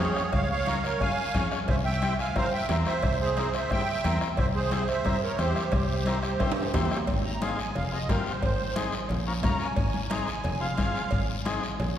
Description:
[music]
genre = latin, cumbia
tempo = 178 BPM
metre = 4/4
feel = straight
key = unclear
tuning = A4 = 440 Hz
[part]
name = musette accordion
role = melody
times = 0.0-11.3 s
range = G4 to Bb5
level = -30 LUFS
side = right 3 dB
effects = none
[part]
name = combo organ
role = accompaniment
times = 0.0-11.6 s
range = C4 to Bb4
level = -33 LUFS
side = left 4 dB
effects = none
[part]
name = fingered electric bass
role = bass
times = 0.0-12.0 s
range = F1 to G2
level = -31 LUFS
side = equal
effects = none
[part]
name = bombo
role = percussion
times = 0.0-11.6 s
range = none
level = -32 LUFS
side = left 1 dB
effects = none
[part]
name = guiro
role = percussion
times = 0.2-12.0 s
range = none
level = -41 LUFS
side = left 4 dB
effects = none
[part]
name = congas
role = percussion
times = 0.3-12.0 s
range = none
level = -36 LUFS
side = left 2 dB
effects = none
[part]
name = cowbell and timbales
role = percussion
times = 0.3-12.0 s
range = none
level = -37 LUFS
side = right 3 dB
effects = none
[sound]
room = wet church reverb, RT60 2.9 s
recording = recorded in a church or concert hall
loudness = -25 LUFS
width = side -10 dB against mid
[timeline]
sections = 0.0-7.1 A section; 7.1-12.0 B section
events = drum fill 6.4-7.1; accordion solo 7.1-12.0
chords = 0.0 Db; 1.7 C; 7.1 Ab; 7.8 Fm; 8.4 Ab; 9.1 Bbm; 9.8 Ab; 10.4 Fm; 11.1 Ab

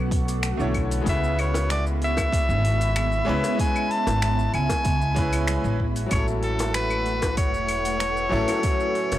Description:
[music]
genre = sunset chillout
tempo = 95 BPM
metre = 4/4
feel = straight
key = unclear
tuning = A4 = 444 Hz
[part]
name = bright grand piano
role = accompaniment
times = 0.0-9.2 s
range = C#3 to C#5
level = -30 LUFS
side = left 2 dB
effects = auto-pan
[part]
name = ethereal airy pad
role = sustained chords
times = 0.0-9.2 s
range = A3 to B5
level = -32 LUFS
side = right 2 dB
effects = ensemble chorus, built-in reverb
[part]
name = concert harp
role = arpeggios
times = 0.0-9.2 s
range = G#3 to F#4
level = -35 LUFS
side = equal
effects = analog delay
[part]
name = upright bass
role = bass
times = 0.0-9.2 s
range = E1 to C#2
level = -26 LUFS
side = equal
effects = tube saturation
[part]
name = deep house drum kit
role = drums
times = 0.1-9.2 s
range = claves, finger snaps, hi-hat, shaker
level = -32 LUFS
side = left 1 dB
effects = overdrive
[part]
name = electronic kick drum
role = drums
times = 0.1-8.8 s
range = none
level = -26 LUFS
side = equal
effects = overdrive
[part]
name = clear soprano saxophone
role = melody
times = 1.1-9.2 s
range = A4 to A5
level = -26 LUFS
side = left 1 dB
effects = none
[part]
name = bongos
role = percussion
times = 1.5-9.2 s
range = none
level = -30 LUFS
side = left 2 dB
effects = none
[sound]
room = small room ambience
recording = dry, gritty hardware recording, transformer saturation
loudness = -21 LUFS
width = side -13 dB against mid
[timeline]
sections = 0.0-9.2 A section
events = none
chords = 0.0 Bm11; 1.1 C#m7; 5.8 A6

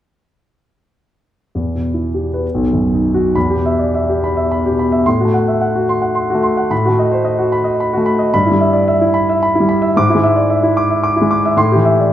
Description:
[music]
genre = classical, romantic character piece for solo piano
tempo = 92-116 BPM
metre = 3/4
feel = rubato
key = E minor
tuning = A4 = 440 Hz
[part]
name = clear concert grand piano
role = solo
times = 1.6-12.1 s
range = B1 to D6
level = -12 LUFS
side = equal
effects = none
[sound]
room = moderate recital hall reverb, RT60 1.7 s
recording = none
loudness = -12 LUFS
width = side -11 dB against mid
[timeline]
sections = 1.6-3.4 A section; 3.4-12.1 B section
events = none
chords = 1.6 Em; 2.4 B; 3.4 Em; 5.1 F#dim/A; 6.7 B7/A; 8.3 Em/G; 10.0 E7/G#; 11.6 Am7

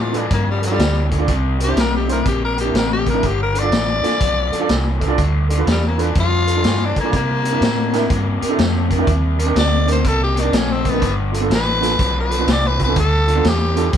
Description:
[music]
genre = electric blues shuffle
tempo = 123 BPM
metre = 4/4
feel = swing 66% on 8ths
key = unclear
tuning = A4 = 444 Hz
[part]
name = growling tenor saxophone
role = melody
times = 0.0-13.9 s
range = G3 to D5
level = -21 LUFS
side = left 3 dB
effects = none
[part]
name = raw garage guitar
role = riff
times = 0.0-14.0 s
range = G2 to Bb3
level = -24 LUFS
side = left 4 dB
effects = overdrive
[part]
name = vintage muted fingered electric bass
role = bass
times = 0.0-14.0 s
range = G1 to C3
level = -20 LUFS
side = equal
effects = none
[part]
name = clear upright piano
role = accompaniment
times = 0.1-13.9 s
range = B3 to D5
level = -23 LUFS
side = right 6 dB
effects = none
[part]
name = vintage drum kit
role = drums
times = 0.1-14.0 s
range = hi-hat, kick drum, snare drum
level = -22 LUFS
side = equal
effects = none
[sound]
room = light reverb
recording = band playing live in one room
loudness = -15 LUFS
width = side -9 dB against mid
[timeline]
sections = 0.0-14.0 A section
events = tenor saxophone solo 0.0-14.0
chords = 0.0 G7(no3); 1.3 C7; 3.2 G7; 7.1 C7; 9.1 Cm7; 11.0 G7

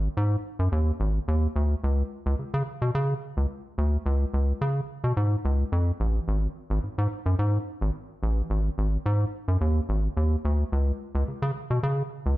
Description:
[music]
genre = funk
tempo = 108 BPM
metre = 4/4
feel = straight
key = G# dorian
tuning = A4 = 441 Hz
[part]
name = rubbery square bass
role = solo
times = 0.0-12.4 s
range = G#1 to C#3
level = -24 LUFS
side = equal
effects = none
[sound]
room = moderate large studio reverb, RT60 1.1 s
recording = none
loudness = -24 LUFS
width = side -17 dB against mid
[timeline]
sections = 0.0-6.3 A section; 6.3-12.4 B section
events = none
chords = none

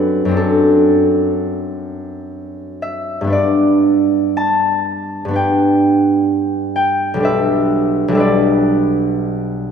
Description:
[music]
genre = classical, solo harp piece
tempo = 54-66 BPM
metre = 4/4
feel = rubato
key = G major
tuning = A4 = 442 Hz
[part]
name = concert harp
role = solo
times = 0.0-9.7 s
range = B1 to A5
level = -13 LUFS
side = equal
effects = none
[sound]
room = wet church reverb, RT60 3.0 s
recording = none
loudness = -13 LUFS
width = side -7 dB against mid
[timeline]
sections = 0.0-9.7 A section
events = none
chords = 0.0 D7/F#; 3.3 G; 7.3 G/B

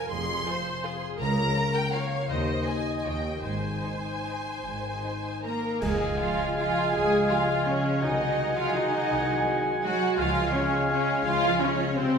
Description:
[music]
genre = classical, orchestral ballroom waltz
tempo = 142-182 BPM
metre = 3/4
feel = rubato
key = Ab major, Db major from 5.8 s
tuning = A4 = 439 Hz
[part]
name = rich studio violin section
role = melody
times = 0.0-12.2 s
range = C5 to C6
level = -35 LUFS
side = left 1 dB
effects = none
[part]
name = rich studio viola section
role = accompaniment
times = 0.0-12.2 s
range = C4 to Eb5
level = -29 LUFS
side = right 1 dB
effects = none
[part]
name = concert harp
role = arpeggios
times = 0.0-12.2 s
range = F2 to C6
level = -34 LUFS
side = left 6 dB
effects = none
[part]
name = rich studio cello section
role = bass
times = 0.1-12.2 s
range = Db2 to Bb3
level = -34 LUFS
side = right 2 dB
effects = none
[part]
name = rich studio double bass section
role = bass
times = 0.1-11.5 s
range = F1 to Eb2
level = -36 LUFS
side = right 2 dB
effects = none
[part]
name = rich studio violin section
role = second line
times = 0.5-12.2 s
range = Eb4 to Bb5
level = -37 LUFS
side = left 2 dB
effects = none
[part]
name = clear clarinet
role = second line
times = 5.8-12.0 s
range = F5 to Gb5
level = -33 LUFS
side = left 1 dB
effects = none
[part]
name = clear oboe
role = second line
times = 5.8-12.0 s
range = Ab5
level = -34 LUFS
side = right 4 dB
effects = none
[part]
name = concert flute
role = second line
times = 5.8-12.0 s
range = Ab5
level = -35 LUFS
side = left 1 dB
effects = none
[part]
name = mellow bassoon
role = accompaniment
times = 5.8-12.0 s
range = Ab3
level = -32 LUFS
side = right 2 dB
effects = none
[part]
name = mellow French horn section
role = sustained chords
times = 5.8-12.2 s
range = Ab3 to Gb4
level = -34 LUFS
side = left 2 dB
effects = none
[part]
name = clash cymbals and concert bass drum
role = percussion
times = 5.8-6.5 s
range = none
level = -38 LUFS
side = equal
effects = none
[sound]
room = wet recital hall reverb, RT60 1.5 s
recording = recorded in a church or concert hall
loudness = -24 LUFS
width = side -6 dB against mid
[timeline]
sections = 0.0-5.8 A section; 5.8-12.2 B section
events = band accent 5.8-6.2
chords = 0.0 Fm; 1.2 Bbm/Db; 2.3 Ab/Eb; 3.1 Eb9; 3.4 Ab; 5.8 Db; 8.0 Ab7/C; 10.2 Db

